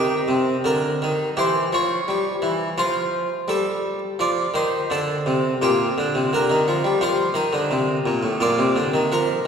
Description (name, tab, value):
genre	classical, baroque-style suite movement for harpsichord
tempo	85 BPM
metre	4/4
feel	rubato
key	unclear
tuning	A4 = 439 Hz
part	harpsichord	solo	0.0-9.5 s	A2 to Eb5	-19 LUFS	equal	none
room	wet concert hall reverb, RT60 2.3 s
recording	recorded in a church or concert hall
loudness	-19 LUFS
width	side -7 dB against mid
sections	0.0-9.5 A section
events	none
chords	0.0 Eb; 1.4 Em6; 2.8 F7; 5.6 Bb; 7.0 F7; 8.4 Bb